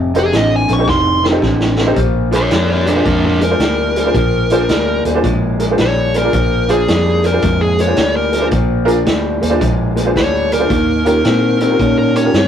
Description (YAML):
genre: electric blues shuffle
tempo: 110 BPM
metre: 4/4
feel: swing 66% on 8ths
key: Bb mixolydian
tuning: A4 = 441 Hz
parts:
  - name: electric guitar through a small old amp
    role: riff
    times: 0.0-12.5 s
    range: F2 to Db4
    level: -18 LUFS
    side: left 1 dB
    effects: none
  - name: vintage muted fingered electric bass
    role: bass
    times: 0.0-12.5 s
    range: F1 to Bb2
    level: -18 LUFS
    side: equal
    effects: none
  - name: honky-tonk upright piano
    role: accompaniment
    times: 0.1-12.3 s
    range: Db4 to C5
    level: -18 LUFS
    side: right 1 dB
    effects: none
  - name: vintage drum kit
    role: drums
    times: 0.1-12.5 s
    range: hi-hat, kick drum, snare drum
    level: -20 LUFS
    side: right 1 dB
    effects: none
  - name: dark smooth lead guitar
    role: melody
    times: 0.2-12.5 s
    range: D4 to Db6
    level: -17 LUFS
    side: equal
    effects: overdrive
room: moderate studio reverb, RT60 0.5 s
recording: rough rehearsal-room recording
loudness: -12 LUFS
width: side -9 dB against mid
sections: 0.0-2.0 A section; 2.0-12.5 B section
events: drum fill 0.9-2.0; lead electric guitar solo 2.0-12.5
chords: 0.0 F7; 2.0 Bb7; 10.7 Eb7